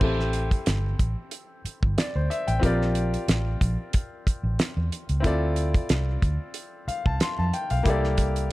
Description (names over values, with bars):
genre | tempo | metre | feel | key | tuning
lush 1970s-style soul | 92 BPM | 4/4 | swing 54% on 16ths | unclear | A4 = 440 Hz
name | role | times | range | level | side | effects
warm baby grand piano | accompaniment | 0.0-8.5 s | Bb3 to C6 | -29 LUFS | left 2 dB | none
vintage muted fingered electric bass | bass | 0.0-8.5 s | G1 to F2 | -25 LUFS | equal | none
damped 70s drum kit | drums | 0.0-8.5 s | crash cymbal, hi-hat, kick drum, snare drum | -25 LUFS | equal | none
room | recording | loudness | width
small room ambience | dark, warm production | -23 LUFS | side -18 dB against mid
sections
0.0-8.5 A section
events
none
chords
0.0 Am7; 2.6 Bb69; 5.2 Dm9; 7.9 C13